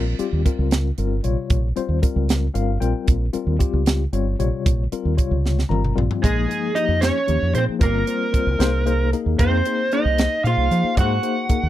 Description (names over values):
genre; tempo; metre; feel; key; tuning
electric jazz fusion; 76 BPM (dotted quarters); 6/8; straight; Bb dorian; A4 = 440 Hz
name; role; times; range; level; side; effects
mellow tine electric piano; accompaniment; 0.0-11.7 s; C3 to Bb5; -25 LUFS; left 8 dB; medium tremolo
deep dub fingered electric bass; bass; 0.0-11.7 s; G1 to F3; -21 LUFS; right 1 dB; none
crisp fusion drum kit; drums; 0.2-11.6 s; hi-hat, kick drum, snare drum, toms; -21 LUFS; right 1 dB; none
smooth overdriven lead guitar; melody; 6.2-11.7 s; Ab4 to Gb5; -23 LUFS; right 2 dB; slapback echo
vintage hollow-body jazz guitar; second line; 6.2-11.7 s; Ab3 to Gb4; -27 LUFS; right 1 dB; slapback echo
room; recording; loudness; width
little or no reverb; dry, close 1970s-style studio recording; -18 LUFS; side -13 dB against mid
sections
0.0-6.2 A section; 6.2-11.7 B section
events
tine electric piano fill 2.3-3.1, 5.5-6.2; drum fill 5.5-6.2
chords
0.0 Bbm69; 6.2 Bbm7; 7.8 Gm7b5; 8.6 Abadd9/C; 9.4 Fm7; 11.0 Ab9